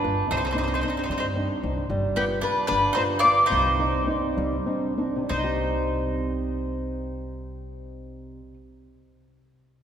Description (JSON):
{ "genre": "italian folk, Italian serenade", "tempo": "62-76 BPM (dotted quarters)", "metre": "6/8", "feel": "straight", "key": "C minor", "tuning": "A4 = 437 Hz", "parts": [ { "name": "mandolin", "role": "melody", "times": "0.0-8.5 s", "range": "G4 to D5", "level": "-24 LUFS", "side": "left 2 dB", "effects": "none" }, { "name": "mandolin", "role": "second line", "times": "0.0-8.5 s", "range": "B3 to F4", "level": "-32 LUFS", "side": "right 4 dB", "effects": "none" }, { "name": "flamenco guitar", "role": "accompaniment", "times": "0.0-8.7 s", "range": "C3 to D5", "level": "-28 LUFS", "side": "equal", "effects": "none" }, { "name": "upright bass", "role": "bass", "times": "0.0-8.5 s", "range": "G1 to G2", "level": "-31 LUFS", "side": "equal", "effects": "none" } ], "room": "wet church reverb, RT60 3.4 s", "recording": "recorded in a church or concert hall", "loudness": "-22 LUFS", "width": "side -9 dB against mid", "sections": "0.0-1.9 A section; 1.9-5.3 B section; 5.3-9.1 C section", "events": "slowing down 1.9-5.3", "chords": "0.3 Cmadd9; 1.9 G7; 3.5 Cmadd9; 5.3 Cm" }